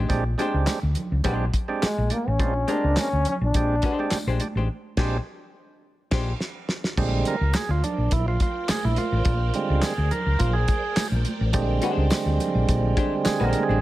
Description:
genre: funk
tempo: 105 BPM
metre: 4/4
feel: straight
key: Bb mixolydian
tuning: A4 = 440 Hz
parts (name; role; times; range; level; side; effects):
- archtop guitar, miked and amplified; accompaniment; 0.0-6.3, 11.8-13.8 s; Ab3 to C5; -31 LUFS; left 6 dB; none
- hollow-body short-scale fingered electric bass; bass; 0.0-13.8 s; A1 to D2; -23 LUFS; equal; none
- percussive tonewheel organ; stabs; 0.1-13.8 s; D3 to Bb4; -26 LUFS; right 4 dB; overdrive
- damped 70s drum kit; drums; 0.1-13.7 s; crash cymbal, handclaps, hi-hat, kick drum, snare drum; -26 LUFS; equal; none
- congas; percussion; 0.1-13.7 s; none; -35 LUFS; right 3 dB; none
- tambourine; percussion; 0.7-13.4 s; none; -39 LUFS; left 3 dB; none
- warm trombone; melody; 1.8-4.2 s; Ab3 to D4; -26 LUFS; left 1 dB; none
- phased string machine; sustained chords; 7.0-13.8 s; Bb4 to G5; -36 LUFS; left 1 dB; ensemble chorus, phaser
room: small room ambience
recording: none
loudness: -21 LUFS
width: side -16 dB against mid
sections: 0.0-7.0 A section; 7.0-13.8 B section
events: band accent 4.7-7.0; drum fill 5.8-7.0; tonewheel organ fill 5.8-7.0; tonewheel organ solo 7.0-13.8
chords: 0.0 Bb13

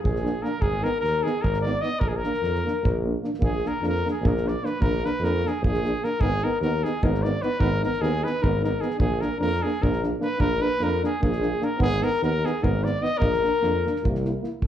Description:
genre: balkan folk, Balkan brass band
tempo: 300 BPM (eighths)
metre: 7/8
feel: straight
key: unclear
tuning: A4 = 440 Hz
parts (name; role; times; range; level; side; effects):
- clear trumpet; melody; 0.0-14.2 s; Ab4 to Eb5; -28 LUFS; left 1 dB; slapback echo
- mellow flugelhorn; second line; 0.0-14.3 s; Ab4 to Eb5; -32 LUFS; left 3 dB; slapback echo
- warm tuba; bass; 0.0-14.7 s; Ab1 to F2; -27 LUFS; right 1 dB; none
- damped 70s drum kit; percussion; 0.1-14.7 s; kick drum, snare drum; -26 LUFS; right 1 dB; none
- warm French horn; accompaniment; 0.2-14.5 s; D4 to E4; -31 LUFS; left 3 dB; slapback echo
- warm euphonium; accompaniment; 0.2-14.5 s; Bb3 to Cb4; -32 LUFS; right 5 dB; slapback echo
room: light reverb, studio ambience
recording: live gig heard through the venue's PA, club reverb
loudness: -22 LUFS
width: side -10 dB against mid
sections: 0.0-3.4 A section; 3.4-14.6 A section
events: none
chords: 0.0 Bb; 0.6 Abm; 2.0 Bb; 6.2 Abm; 9.0 Bb; 11.8 Abm; 13.2 Bb; 14.0 C7

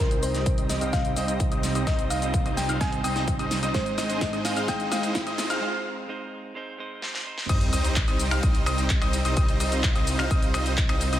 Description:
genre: EDM, festival progressive house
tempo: 128 BPM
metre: 4/4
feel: straight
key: unclear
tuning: A4 = 443 Hz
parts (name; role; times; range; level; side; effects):
- thumb-piano-like synth pluck; melody; 0.0-5.0 s; Bb4 to Ab5; -32 LUFS; left 1 dB; chorus, dub echo
- clean electric guitar; accompaniment; 0.0-7.5 s; Ab2 to C5; -32 LUFS; right 3 dB; sidechain pumping
- lush unison pad; sustained chords; 0.0-11.2 s; C3 to Eb5; -36 LUFS; left 1 dB; chorus, sidechain pumping
- clear concert grand piano; arpeggios; 0.0-11.2 s; Eb6 to F6; -34 LUFS; left 2 dB; sidechain pumping, low-pass filter, dub echo
- supersaw chords; riff; 0.0-11.2 s; G3 to F5; -30 LUFS; right 1 dB; cassette tape, sidechain pumping, low-pass filter, dub echo
- wide detuned saw bass; bass; 0.0-11.2 s; Ab1 to C2; -30 LUFS; equal; chorus, sidechain pumping
- big-room dance drum kit; drums; 0.0-11.2 s; cabasa, crash cymbal, finger snaps, handclaps, hi-hat, snare drum; -31 LUFS; left 1 dB; small room ambience
- riser and sub drop; sound effects; 0.0-9.4 s; none; -36 LUFS; equal; none
- electronic kick drum; drums; 0.5-10.9 s; none; -25 LUFS; equal; small room ambience
room: light reverb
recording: high-pass filter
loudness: -22 LUFS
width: side -12 dB against mid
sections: 0.0-7.5 A section; 7.5-11.2 B section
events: build-up 0.0-7.5; drum fill 0.0-5.6, 7.0-7.5; filter sweep on supersaw synth 0.0-7.5; filter sweep on grand piano 0.0-7.5; filter sweep 0.0-7.5; break 5.6-7.5; drop 7.5-11.2; impact 7.5-9.4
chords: 0.0 Cm; 3.7 Ab; 7.5 Cm

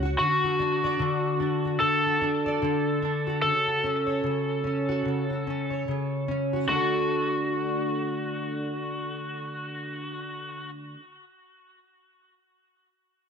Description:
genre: acoustic pop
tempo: 74 BPM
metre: 4/4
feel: swing 60% on 16ths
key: D major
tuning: A4 = 440 Hz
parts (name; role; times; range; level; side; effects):
- fingerpicked plugged-in steel-string acoustic guitar; accompaniment; 0.0-11.0 s; C#3 to D5; -28 LUFS; left 1 dB; double-tracked left and right
- overdriven slide guitar; melody; 0.2-10.7 s; F#4 to A4; -27 LUFS; equal; tape echo
room: moderate small room reverb, RT60 0.5 s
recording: none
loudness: -24 LUFS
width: side -6 dB against mid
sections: 0.0-6.7 A section; 6.7-9.9 B section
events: none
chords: 0.2 D; 3.4 F#m/C#; 6.7 D

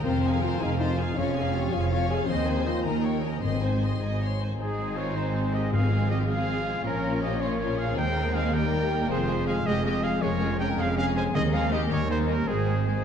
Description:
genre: cinematic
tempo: 106 BPM (dotted quarters)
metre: 6/8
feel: straight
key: Ab major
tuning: A4 = 438 Hz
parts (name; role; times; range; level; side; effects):
- warm symphonic violin section; melody; 0.0-12.9 s; C4 to C6; -39 LUFS; left 6 dB; none
- warm symphonic violin section; second line; 0.0-13.0 s; C4 to Db5; -37 LUFS; left 3 dB; none
- warm symphonic viola section; accompaniment; 0.0-13.0 s; F3 to F5; -34 LUFS; right 1 dB; none
- dark French horn section; sustained chords; 0.0-13.0 s; Eb3 to Ab4; -32 LUFS; left 4 dB; none
- concert harp; arpeggios; 0.0-13.0 s; Ab2 to C6; -33 LUFS; left 9 dB; none
- rich symphonic double bass section; bass; 0.0-13.0 s; F1 to Eb2; -31 LUFS; right 4 dB; none
- warm symphonic cello section; bass; 0.1-13.0 s; Eb2 to Bb2; -30 LUFS; right 2 dB; none
- timpani; percussion; 3.4-6.3, 11.3-11.9 s; Ab2 to Eb3; -31 LUFS; left 1 dB; none
- bright silver concert flute; second line; 4.6-13.0 s; Ab4 to Ab5; -37 LUFS; left 2 dB; none
- clear clarinet; second line; 4.6-13.0 s; Ab4 to Db5; -38 LUFS; left 2 dB; none
- clear trumpet; stabs; 4.6-13.0 s; Ab4 to Ab5; -32 LUFS; right 3 dB; none
room: wet scoring stage reverb, RT60 1.7 s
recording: dark, warm production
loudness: -24 LUFS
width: side -8 dB against mid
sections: 0.0-4.6 A section; 4.6-13.0 A section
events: none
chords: 0.0 Fm; 1.2 Db/F; 2.3 Ab/Eb; 2.9 Eb7; 3.4 Ab; 5.7 Fm/Ab; 6.9 Bbmadd9; 8.0 Ab/Eb; 8.5 Eb; 9.1 Fm; 10.2 Db/F; 11.3 Ab/Eb; 11.9 Eb; 12.5 Ab

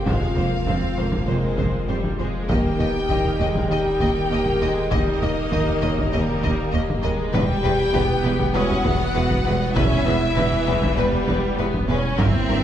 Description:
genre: cinematic, hybrid orchestral and electronic film score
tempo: 99 BPM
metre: 4/4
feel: straight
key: unclear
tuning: A4 = 442 Hz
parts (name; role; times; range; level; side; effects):
- dark symphonic violin section; second line; 0.0-12.6 s; A#4 to G5; -29 LUFS; left 3 dB; none
- rich symphonic viola section; accompaniment; 0.0-12.6 s; E3 to C#4; -28 LUFS; right 1 dB; none
- chorused pulse-width pad; sustained chords; 0.0-12.6 s; F3 to D#5; -31 LUFS; equal; none
- mellow French horn section; sustained chords; 0.0-12.6 s; A#3 to G4; -27 LUFS; left 1 dB; none
- pure sine sub bass; bass; 0.0-12.6 s; D#1 to G1; -31 LUFS; equal; none
- felt-muted upright piano; texture; 0.0-12.2 s; G3 to D#6; -37 LUFS; left 2 dB; none
- warm symphonic violin section; melody; 0.1-12.6 s; Bb4 to D#5; -31 LUFS; left 5 dB; none
- harp-like synth pluck; arpeggios; 0.1-12.6 s; D#3 to F4; -32 LUFS; right 1 dB; none
- clear symphonic double bass section; bass; 0.1-12.6 s; E1 to D#2; -27 LUFS; right 2 dB; none
- rich symphonic cello section; bass; 0.1-12.6 s; D#2 to G2; -28 LUFS; right 2 dB; none
- taiko ensemble; drums; 0.1-12.6 s; none; -26 LUFS; equal; none
room: wet recital hall reverb, RT60 1.6 s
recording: heard from further back in the room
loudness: -19 LUFS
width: side -10 dB against mid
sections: 0.0-12.6 A section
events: none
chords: 0.0 Fm; 2.5 D#; 7.3 Em

